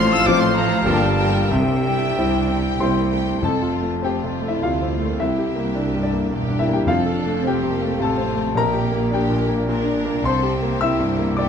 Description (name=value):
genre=classical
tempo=88-110 BPM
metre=3/4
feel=rubato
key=F major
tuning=A4 = 440 Hz
part: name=clear concert grand piano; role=melody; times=0.0-11.5 s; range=G1 to E6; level=-20 LUFS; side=left 1 dB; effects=none
part: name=warm symphonic violin section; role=melody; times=0.0-11.5 s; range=C5 to E6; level=-32 LUFS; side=left 3 dB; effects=none
part: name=bright clarinet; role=second line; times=0.0-3.1 s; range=C5 to F5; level=-28 LUFS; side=left 4 dB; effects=none
part: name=hollow concert flute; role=second line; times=0.0-3.1 s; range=G5 to E6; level=-27 LUFS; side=left 3 dB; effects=none
part: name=warm symphonic violin section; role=second line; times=0.0-11.5 s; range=F4 to G5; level=-30 LUFS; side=left 3 dB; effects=none
part: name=warm symphonic viola section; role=accompaniment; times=0.0-11.5 s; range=F3 to F4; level=-29 LUFS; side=right 1 dB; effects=none
part: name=clear trombone section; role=sustained chords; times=0.0-3.1 s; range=G2 to G3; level=-30 LUFS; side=right 4 dB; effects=none
part: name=mellow French horn section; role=sustained chords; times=0.0-3.1 s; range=Bb3 to C5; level=-29 LUFS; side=left 4 dB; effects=none
part: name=warm trumpet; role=stabs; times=0.0-3.1 s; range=E5 to F5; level=-28 LUFS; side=right 6 dB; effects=none
part: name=rich chamber cello section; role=bass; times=0.0-11.5 s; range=C2 to C3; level=-29 LUFS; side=right 1 dB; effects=none
part: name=warm symphonic double bass section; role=bass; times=0.0-11.5 s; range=E1 to D2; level=-28 LUFS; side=right 4 dB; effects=none
part: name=timpani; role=percussion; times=1.5-7.7 s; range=F2 to C3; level=-31 LUFS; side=left 2 dB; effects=none
room=moderate recital hall reverb, RT60 1.6 s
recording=close, detailed microphones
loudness=-18 LUFS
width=side -7 dB against mid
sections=0.0-3.4 A section; 3.4-11.5 B section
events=none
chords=0.0 F/A; 0.9 Gm7; 1.5 C; 3.4 F; 5.2 C9; 6.9 F; 8.5 Gm/Bb; 10.2 C7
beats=0.27 0.86 | 1.51 2.17 2.81 | 3.43 4.03 4.63 | 5.20 5.75 6.31 | 6.87 7.44 8.00 | 8.55 9.11 9.67 | 10.23 10.80 11.37